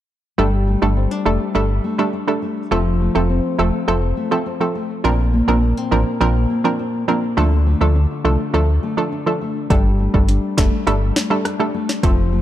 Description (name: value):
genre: dancehall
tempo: 103 BPM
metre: 4/4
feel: straight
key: unclear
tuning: A4 = 440 Hz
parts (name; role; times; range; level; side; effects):
- hollow square pluck; accompaniment; 0.4-12.2 s; F3 to Bb4; -20 LUFS; right 3 dB; chorus, sidechain pumping
- nylon-string guitar; arpeggios; 0.4-12.4 s; Bb2 to D4; -22 LUFS; left 3 dB; ping-pong delay
- sub bass with octave; bass; 0.4-12.4 s; E1 to D2; -17 LUFS; equal; none
- afro-pop drum kit; drums; 9.7-12.2 s; hi-hat, kick drum, rim click, snare drum; -18 LUFS; equal; none
room: light reverb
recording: dark, warm production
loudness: -16 LUFS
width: side -12 dB against mid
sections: 0.4-12.4 A section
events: none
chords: 0.4 Gsus2; 2.7 F; 5.0 Bbadd9; 7.4 Dm; 9.7 Gsus2